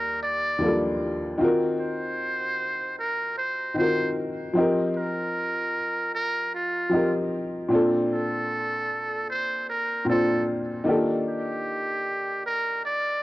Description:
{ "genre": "hip hop", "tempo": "76 BPM", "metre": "4/4", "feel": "swing 65% on 16ths", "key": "unclear", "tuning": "A4 = 440 Hz", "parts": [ { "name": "trumpet with metal mute", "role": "melody", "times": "0.0-13.2 s", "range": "F4 to D5", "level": "-27 LUFS", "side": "right 1 dB", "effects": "low-pass filter" }, { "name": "warm upright piano", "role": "accompaniment", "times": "0.0-13.2 s", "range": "Eb2 to C5", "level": "-25 LUFS", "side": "left 1 dB", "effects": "cassette tape, low-pass filter" } ], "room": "wet small room reverb, RT60 0.5 s", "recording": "worn, warbling old tape, cassette tape, warbly pitch drift", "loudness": "-23 LUFS", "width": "side -17 dB against mid", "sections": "0.0-13.2 A section", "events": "none", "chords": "0.0 Ebmaj9#11; 1.4 Ebm6; 4.6 F7sus4; 7.7 Bbmaj9; 10.9 Ebmaj9#11" }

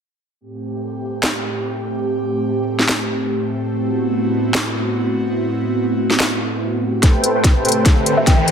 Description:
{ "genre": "future bass", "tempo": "145 BPM", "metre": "4/4", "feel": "half-time", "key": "A minor", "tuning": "A4 = 440 Hz", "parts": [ { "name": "airy breathy pad", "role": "sustained chords", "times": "0.4-8.5 s", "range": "A2 to G4", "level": "-20 LUFS", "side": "right 1 dB", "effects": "chorus, sidechain pumping" }, { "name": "trap drum kit", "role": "drums", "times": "1.2-8.5 s", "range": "handclaps, hi-hat, snare drum", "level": "-20 LUFS", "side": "equal", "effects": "none" }, { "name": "soft supersaw", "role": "riff", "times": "7.0-8.5 s", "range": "A3 to G5", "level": "-18 LUFS", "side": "left 1 dB", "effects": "sidechain pumping, low-pass filter, digital delay" }, { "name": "electronic kick drum", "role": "drums", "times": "7.0-8.4 s", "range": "none", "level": "-13 LUFS", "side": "equal", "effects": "none" }, { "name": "riser", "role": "sound effects", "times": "7.4-8.5 s", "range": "none", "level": "-23 LUFS", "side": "equal", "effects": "none" }, { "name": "kalimba", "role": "melody", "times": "8.2-8.4 s", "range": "E5 to G5", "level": "-18 LUFS", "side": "left 1 dB", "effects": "sidechain pumping, low-pass filter" } ], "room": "moderate lush hall reverb, RT60 1.8 s, digital ambience", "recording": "dense, heavily limited modern master", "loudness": "-16 LUFS", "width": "side -7 dB against mid", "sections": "0.4-7.0 A section; 7.0-8.5 B section", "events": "build-up 7.0-8.5; drum fill 7.0-8.5; riser 7.4-8.5", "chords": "0.4 Am7; 3.7 Am69; 6.8 Am7" }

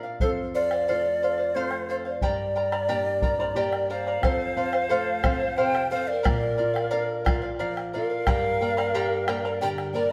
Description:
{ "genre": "andean folk, Andean ensemble", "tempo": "89 BPM", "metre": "3/4", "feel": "straight", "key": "unclear", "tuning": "A4 = 440 Hz", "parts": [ { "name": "charango", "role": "accompaniment", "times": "0.0-10.1 s", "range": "G4 to Bb5", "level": "-31 LUFS", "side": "equal", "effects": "none" }, { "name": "flamenco guitar", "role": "accompaniment", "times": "0.0-10.1 s", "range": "F2 to E5", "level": "-36 LUFS", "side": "equal", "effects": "none" }, { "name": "bombo", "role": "percussion", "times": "0.0-9.9 s", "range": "none", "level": "-30 LUFS", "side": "equal", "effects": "none" }, { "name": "bright large quena", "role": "melody", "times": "0.2-10.1 s", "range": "A4 to G5", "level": "-30 LUFS", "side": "equal", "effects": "none" }, { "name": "breathy bright polished pan flute", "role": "second line", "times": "3.9-10.1 s", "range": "Bb4 to D5", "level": "-32 LUFS", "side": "equal", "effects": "none" } ], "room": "wet stone room reverb, RT60 1.3 s", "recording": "band playing live in one room", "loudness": "-25 LUFS", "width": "mono", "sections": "0.0-4.2 A section; 4.2-10.1 B section", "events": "nylon-string guitar fill 0.0, 2.9-4.2", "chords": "0.2 F; 2.2 Gm; 4.2 F; 6.3 Bb; 8.3 Gm" }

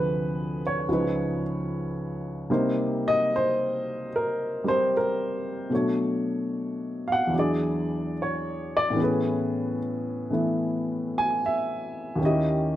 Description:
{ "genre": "jazz ballad", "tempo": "74 BPM", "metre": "4/4", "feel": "swing 68% on 8ths", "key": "unclear", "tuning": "A4 = 441 Hz", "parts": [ { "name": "warm upright piano", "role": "solo", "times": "0.0-12.8 s", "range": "Db2 to G#5", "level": "-24 LUFS", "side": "equal", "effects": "slapback echo" } ], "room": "light reverb", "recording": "dry, close 1970s-style studio recording", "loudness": "-24 LUFS", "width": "side -13 dB against mid", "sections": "0.0-12.8 A section", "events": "none", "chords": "0.0 Dm7b5; 0.9 Db9; 2.5 Cm7; 5.7 Bm9; 7.3 E9; 9.0 Amaj9; 12.2 Eb7b9" }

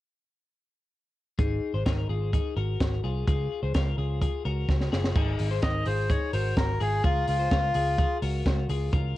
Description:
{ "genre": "jangly indie pop", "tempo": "127 BPM", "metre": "4/4", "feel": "straight", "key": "unclear", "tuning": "A4 = 440 Hz", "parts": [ { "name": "clean electric guitar", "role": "arpeggios", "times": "1.4-9.2 s", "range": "Eb4 to C5", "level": "-33 LUFS", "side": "left 7 dB", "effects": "wide subtle chorus, cassette tape, plate reverb, tape echo" }, { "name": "vintage muted picked electric bass", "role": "bass", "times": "1.4-9.1 s", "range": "Gb1 to Db2", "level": "-28 LUFS", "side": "right 1 dB", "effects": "none" }, { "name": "compact cocktail drum kit", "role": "drums", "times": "1.4-9.0 s", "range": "crash cymbal, hi-hat, kick drum, snare drum", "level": "-27 LUFS", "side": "equal", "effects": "none" }, { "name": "melodica", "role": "melody", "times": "5.6-8.2 s", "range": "F4 to Eb5", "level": "-29 LUFS", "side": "left 1 dB", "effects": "plate reverb" } ], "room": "little or no reverb", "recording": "home recording on cassette", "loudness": "-24 LUFS", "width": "side -16 dB against mid", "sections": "1.4-5.2 A section; 5.2-9.2 B section", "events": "drum fill 4.7-5.2", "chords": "1.4 Ab; 3.3 Db; 5.2 Ab; 7.0 Bbm/Db" }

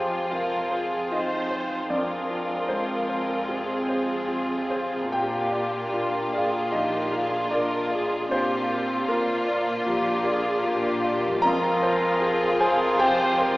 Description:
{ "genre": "cinematic, emotional film score for orchestra", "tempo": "76 BPM", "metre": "4/4", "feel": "rubato", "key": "F dorian", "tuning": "A4 = 442 Hz", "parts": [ { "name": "rich symphonic violin section", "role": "melody", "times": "0.0-13.6 s", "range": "F4", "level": "-28 LUFS", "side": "equal", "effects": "none" }, { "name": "mellow clarinet", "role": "second line", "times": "0.0-13.6 s", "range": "Bb3 to Bb4", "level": "-31 LUFS", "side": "equal", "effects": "none" }, { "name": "rich symphonic violin section", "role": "second line", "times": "0.0-13.6 s", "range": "Ab3 to D4", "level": "-33 LUFS", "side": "left 1 dB", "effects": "none" }, { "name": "bright grand piano", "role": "accompaniment", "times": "0.0-13.6 s", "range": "F2 to Bb5", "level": "-26 LUFS", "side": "equal", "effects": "none" }, { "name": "concert harp", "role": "arpeggios", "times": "0.0-13.6 s", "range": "F2 to D6", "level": "-39 LUFS", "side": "left 2 dB", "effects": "none" }, { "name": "rich symphonic cello section", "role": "bass", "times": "0.0-13.6 s", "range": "F2 to Bb2", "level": "-38 LUFS", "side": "equal", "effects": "none" }, { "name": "rich symphonic viola section", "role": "accompaniment", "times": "0.3-13.6 s", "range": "F4 to C5", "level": "-30 LUFS", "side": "right 1 dB", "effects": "none" } ], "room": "wet recital hall reverb, RT60 1.5 s", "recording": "recorded in a church or concert hall, small speaker sound", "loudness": "-22 LUFS", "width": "side -20 dB against mid", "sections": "0.0-13.6 A section", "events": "none", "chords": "0.0 Fm" }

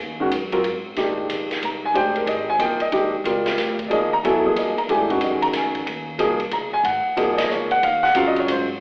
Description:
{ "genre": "modal jazz", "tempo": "184 BPM", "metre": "3/4", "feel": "swing 64% on 8ths", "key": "unclear", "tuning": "A4 = 442 Hz", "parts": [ { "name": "upright bass", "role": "bass", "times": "0.0-8.8 s", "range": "F1 to Bb2", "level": "-35 LUFS", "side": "equal", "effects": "none" }, { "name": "warm upright piano", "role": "accompaniment", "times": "0.2-8.7 s", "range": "Db3 to Bb5", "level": "-19 LUFS", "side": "equal", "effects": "none" }, { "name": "swinging big-band drum kit", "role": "drums", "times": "0.3-8.6 s", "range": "hi-hat, kick drum, ride cymbal, snare drum", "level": "-28 LUFS", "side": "equal", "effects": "none" } ], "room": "wet recital hall reverb, RT60 1.6 s", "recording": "recorded in a church or concert hall, telephone sound", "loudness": "-18 LUFS", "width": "side -38 dB against mid", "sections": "0.0-8.8 A section", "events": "none", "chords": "0.0 Ab7(no3); 1.0 Bb9sus4; 4.9 Ab9sus4" }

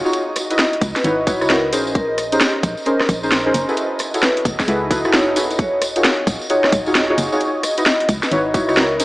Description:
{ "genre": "UK garage, two-step garage", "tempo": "132 BPM", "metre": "4/4", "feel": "swing 63% on 16ths", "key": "unclear", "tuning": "A4 = 441 Hz", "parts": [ { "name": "ethereal airy pad", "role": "sustained chords", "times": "0.0-9.0 s", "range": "Eb5", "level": "-27 LUFS", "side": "equal", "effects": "ensemble chorus, built-in reverb, sidechain pumping" }, { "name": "deep mellow chord stab", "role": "stabs", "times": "0.0-9.0 s", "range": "Db4 to Eb5", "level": "-19 LUFS", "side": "equal", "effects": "chorus, diffuse ambient delay" }, { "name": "organ-like FM bass", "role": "bass", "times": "0.0-9.0 s", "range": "Eb1 to Db2", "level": "-26 LUFS", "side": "equal", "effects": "sidechain pumping" }, { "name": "garage drum kit", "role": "drums", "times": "0.1-9.0 s", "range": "hi-hat, rim click, snare drum", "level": "-19 LUFS", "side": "equal", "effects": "overdrive" }, { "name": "tambourine", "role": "percussion", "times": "0.1-9.0 s", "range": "none", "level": "-30 LUFS", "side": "equal", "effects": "none" }, { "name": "vibraphone with medium mallets", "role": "melody", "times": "0.6-9.0 s", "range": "G4 to Eb5", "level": "-23 LUFS", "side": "equal", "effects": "diffuse ambient delay" }, { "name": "electronic kick drum", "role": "drums", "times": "0.8-8.7 s", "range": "none", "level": "-21 LUFS", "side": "equal", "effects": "overdrive" }, { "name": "swell", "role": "sound effects", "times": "4.9-5.6 s", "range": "none", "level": "-27 LUFS", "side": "right 1 dB", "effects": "none" } ], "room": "wet lush hall reverb, RT60 2.0 s", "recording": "dreamy mix soaked in reverb, small speaker sound", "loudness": "-15 LUFS", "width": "side -19 dB against mid", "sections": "0.0-9.0 A section", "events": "swell 4.9-5.6", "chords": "0.1 Dbm11; 1.7 Bbm11; 3.5 Gbm11; 5.6 Ebm11; 7.4 Dbm11" }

